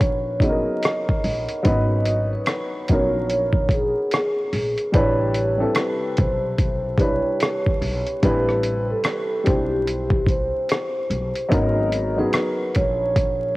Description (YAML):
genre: lo-fi hip hop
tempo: 73 BPM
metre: 4/4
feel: swing 60% on 16ths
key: unclear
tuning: A4 = 441 Hz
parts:
  - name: vibraphone with soft mallets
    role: melody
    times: 0.0-13.5 s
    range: G4 to D#5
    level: -24 LUFS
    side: right 1 dB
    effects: low-pass filter
  - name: warm upright piano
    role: accompaniment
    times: 0.0-13.6 s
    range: C3 to C5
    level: -25 LUFS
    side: equal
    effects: cassette tape, low-pass filter
  - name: upright bass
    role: bass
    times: 0.0-13.6 s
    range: G#1 to B1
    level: -26 LUFS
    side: equal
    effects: none
  - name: dusty soul sampler-style drum kit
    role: drums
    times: 0.0-13.4 s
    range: hi-hat, kick drum, rim click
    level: -22 LUFS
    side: equal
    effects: overdrive, vintage 12-bit sampler grit, cassette tape
room: light reverb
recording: home recording on cassette, vinyl crackle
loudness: -19 LUFS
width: side -20 dB against mid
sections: 0.0-13.6 A section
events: none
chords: 0.0 G#m11; 4.9 Am11; 11.5 G#m11